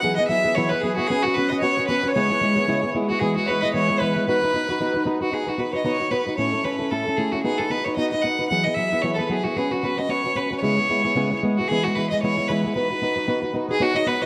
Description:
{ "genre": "celtic folk, Celtic reel", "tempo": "226 BPM", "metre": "4/4", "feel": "swing 56% on 8ths", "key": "B mixolydian", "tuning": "A4 = 440 Hz", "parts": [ { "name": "clear fiddle", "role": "melody", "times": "0.0-14.3 s", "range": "F#4 to F#5", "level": "-26 LUFS", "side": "equal", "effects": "none" }, { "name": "accordion", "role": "second line", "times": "0.0-5.0, 13.7-14.3 s", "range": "F#4 to F#5", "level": "-30 LUFS", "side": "equal", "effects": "none" }, { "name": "fingerpicked plugged-in swing-style acoustic guitar", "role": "accompaniment", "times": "0.0-14.3 s", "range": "A2 to C#5", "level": "-26 LUFS", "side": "equal", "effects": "none" } ], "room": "moderate concert hall reverb, RT60 2.2 s", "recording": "none", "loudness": "-22 LUFS", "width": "mono", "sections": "0.0-5.3 A section; 5.3-13.8 A section", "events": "none", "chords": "0.0 Eadd9; 1.1 Bsus2; 2.1 C#m7; 3.2 E; 4.3 B; 6.4 A; 7.5 B; 8.5 Eadd9; 9.6 Bsus2; 10.6 C#m7; 11.7 E; 12.8 B", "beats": "| 0.03 0.29 0.56 0.82 | 1.09 1.35 1.62 1.88 | 2.15 2.41 2.68 2.94 | 3.21 3.47 3.74 4.00 | 4.27 4.53 4.79 5.06 | 5.33 5.59 5.86 6.12 | 6.39 6.65 6.92 7.18 | 7.45 7.72 7.98 8.25 | 8.51 8.78 9.04 9.31 | 9.58 9.84 10.11 10.37 | 10.64 10.90 11.17 11.43 | 11.70 11.96 12.23 12.49 | 12.76 13.02 13.28 13.55 | 13.81 14.07" }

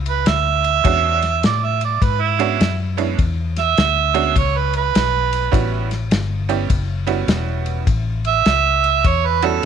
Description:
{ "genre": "electric blues shuffle", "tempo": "102 BPM", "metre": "4/4", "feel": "swing 64% on 8ths", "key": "unclear", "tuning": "A4 = 440 Hz", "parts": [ { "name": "vintage muted fingered electric bass", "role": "bass", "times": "0.0-9.6 s", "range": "E1 to A2", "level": "-21 LUFS", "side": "left 2 dB", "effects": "none" }, { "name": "mellow harmonica", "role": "second line", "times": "0.1-9.7 s", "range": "E4 to E5", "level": "-17 LUFS", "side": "right 11 dB", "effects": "none" }, { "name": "warm soul drum kit", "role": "drums", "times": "0.1-9.7 s", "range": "kick drum, ride cymbal, snare drum", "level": "-22 LUFS", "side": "left 2 dB", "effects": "none" }, { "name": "tack piano", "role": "accompaniment", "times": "0.8-9.7 s", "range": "G3 to G4", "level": "-22 LUFS", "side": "right 12 dB", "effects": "none" } ], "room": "small room ambience", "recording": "1960s-style stereo", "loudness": "-15 LUFS", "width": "side -8 dB against mid", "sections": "0.0-9.7 A section", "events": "harmonica solo 0.0-9.7", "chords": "0.0 Aadd9 (rootless); 0.8 E13; 5.5 A13", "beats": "0.26 | 0.85 1.44 2.02 2.61 | 3.19 3.78 4.36 4.95 | 5.54 6.12 6.71 7.29 | 7.88 8.46 9.05 9.64" }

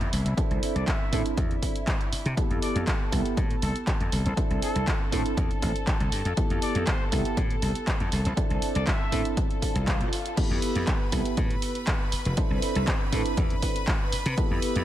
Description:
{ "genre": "filtered disco house", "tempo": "120 BPM", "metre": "4/4", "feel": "straight", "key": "C major", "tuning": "A4 = 439 Hz", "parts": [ { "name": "warm concert grand piano", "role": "accompaniment", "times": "0.0-14.8 s", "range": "B3 to A4", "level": "-32 LUFS", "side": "right 2 dB", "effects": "phaser, sidechain pumping, low-pass filter" }, { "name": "clear studio violin section", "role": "sustained chords", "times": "0.0-14.8 s", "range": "E4 to B5", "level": "-36 LUFS", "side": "left 1 dB", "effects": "sidechain pumping, low-pass filter" }, { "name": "slap bass", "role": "bass", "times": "0.0-14.8 s", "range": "F1 to C3", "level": "-28 LUFS", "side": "equal", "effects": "sidechain pumping, low-pass filter" }, { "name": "punchy analog drum machine", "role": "drums", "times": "0.0-14.8 s", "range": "crash cymbal, handclaps, hi-hat", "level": "-33 LUFS", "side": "right 1 dB", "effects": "sidechain pumping on hats, sidechain pumping on cymbals" }, { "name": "electronic kick drum", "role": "drums", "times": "0.4-14.5 s", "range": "none", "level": "-27 LUFS", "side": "equal", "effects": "none" }, { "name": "bright trumpet section", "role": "melody", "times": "0.8-9.3 s", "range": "A4 to E5", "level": "-37 LUFS", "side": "left 3 dB", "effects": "sidechain pumping, low-pass filter" }, { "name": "swell", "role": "sound effects", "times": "9.6-10.4 s", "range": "none", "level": "-38 LUFS", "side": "left 2 dB", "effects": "none" } ], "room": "little or no reverb", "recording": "none", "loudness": "-24 LUFS", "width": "side -12 dB against mid", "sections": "0.0-10.4 A section; 10.4-14.8 B section", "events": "swell 9.6-10.4; drop 10.4-14.8", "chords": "0.4 C69; 2.4 Fmaj9#11; 4.4 C69; 6.4 Fmaj9#11; 8.4 C69; 10.4 Fmaj9#11; 12.4 C69", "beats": "| 0.38 0.88 1.38 1.88 | 2.38 2.88 3.38 3.88 | 4.38 4.88 5.38 5.88 | 6.38 6.88 7.38 7.88 | 8.38 8.88 9.38 9.88 | 10.38 10.88 11.38 11.88 | 12.38 12.88 13.38 13.88 | 14.38" }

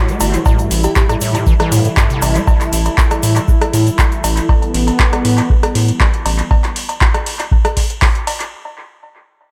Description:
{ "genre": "acid house", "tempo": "119 BPM", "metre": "4/4", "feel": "straight", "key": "unclear", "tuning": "A4 = 440 Hz", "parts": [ { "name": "warm analog pad", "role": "sustained chords", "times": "0.0-6.5 s", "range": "E3 to F#4", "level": "-24 LUFS", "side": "equal", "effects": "chorus, sidechain pumping" }, { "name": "acid bass, square", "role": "riff", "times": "0.0-2.4 s", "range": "G2 to A3", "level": "-24 LUFS", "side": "equal", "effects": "overdrive, lush chorus, cassette tape, sidechain pumping, analog delay" }, { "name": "granular cloud pad", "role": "texture", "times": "0.1-4.5 s", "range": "E4 to A5", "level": "-28 LUFS", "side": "equal", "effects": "built-in reverb, sidechain pumping" }, { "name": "electro analog drum machine", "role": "drums", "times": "0.1-8.5 s", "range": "cowbell, handclaps, hi-hat, ride cymbal, rim click", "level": "-21 LUFS", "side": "equal", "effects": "overdrive, analog delay" }, { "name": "tube shaker", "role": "percussion", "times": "0.1-4.5 s", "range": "none", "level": "-30 LUFS", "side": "equal", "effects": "none" }, { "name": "round analog bass", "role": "bass", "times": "0.2-6.4 s", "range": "G1 to A2", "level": "-17 LUFS", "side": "equal", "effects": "tube saturation, sidechain pumping" }, { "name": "electronic kick drum", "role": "drums", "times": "0.5-8.1 s", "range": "none", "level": "-16 LUFS", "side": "equal", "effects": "overdrive" }, { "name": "bell-like FM electric piano", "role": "melody", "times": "0.8-1.0 s", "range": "G4", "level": "-26 LUFS", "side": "equal", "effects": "chorus, analog delay" } ], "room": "light reverb", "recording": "echo-heavy mix", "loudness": "-14 LUFS", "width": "mono", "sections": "0.0-8.5 A section", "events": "drop 0.0-8.5", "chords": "0.0 A5", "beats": "| 0.46 0.96 1.47 1.97 | 2.48 2.98 3.48 3.99 | 4.49 5.00 5.50 6.00 | 6.51 7.01 7.52 8.02" }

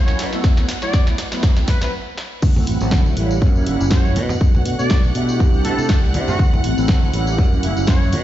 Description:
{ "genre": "filtered disco house", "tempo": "121 BPM", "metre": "4/4", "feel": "swing 55% on 16ths", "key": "unclear", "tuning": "A4 = 439 Hz", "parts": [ { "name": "dark trumpet section", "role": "melody", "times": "0.0-8.2 s", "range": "F#4 to D5", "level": "-29 LUFS", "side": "equal", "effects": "sidechain pumping, tape echo" }, { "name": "rich studio string section", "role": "sustained chords", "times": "0.0-8.2 s", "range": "F#5 to F#6", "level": "-31 LUFS", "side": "right 2 dB", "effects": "vintage 12-bit sampler grit, sidechain pumping" }, { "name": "fingered electric bass", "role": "bass", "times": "0.0-8.2 s", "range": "F#1 to C3", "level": "-22 LUFS", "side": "equal", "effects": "sidechain pumping, high-pass filter" }, { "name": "mellow synth brass", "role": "accompaniment", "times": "0.1-8.1 s", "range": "F#3 to G4", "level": "-24 LUFS", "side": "right 1 dB", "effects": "chorus, phaser, sidechain pumping" }, { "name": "punchy analog drum machine", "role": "drums", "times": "0.1-8.2 s", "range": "crash cymbal, hi-hat, snare drum", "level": "-26 LUFS", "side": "equal", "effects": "high-pass filter on snare, sidechain pumping on hats, high-pass filter on hats, sidechain pumping on cymbals, high-pass filter on cymbals" }, { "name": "electronic kick drum", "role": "drums", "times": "0.4-8.0 s", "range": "none", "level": "-15 LUFS", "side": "equal", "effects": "none" }, { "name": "tambourine and congas", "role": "percussion", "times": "2.4-8.2 s", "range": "none", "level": "-28 LUFS", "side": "right 2 dB", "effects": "sidechain pumping on perc" } ], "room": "light reverb, digital ambience", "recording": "played on a big sound system in a bare room, stone room reverb, nothing above 7.6 kHz", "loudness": "-15 LUFS", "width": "side -13 dB against mid", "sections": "0.0-2.4 A section; 2.4-8.2 B section", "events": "build-up 0.0-2.4; drum fill 0.0-1.9, 2.2; stop 1.9-2.4; drop 2.4-8.2", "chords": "0.2 B5; 1.4 C6; 2.4 D9; 3.4 F#7b9; 4.2 Bm7; 5.4 C69; 6.4 D9; 7.4 F#7b9", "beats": "| 0.44 0.94 1.43 1.93 | 2.42 2.92 3.42 3.91 | 4.41 4.90 5.40 5.90 | 6.39 6.89 7.38 7.88" }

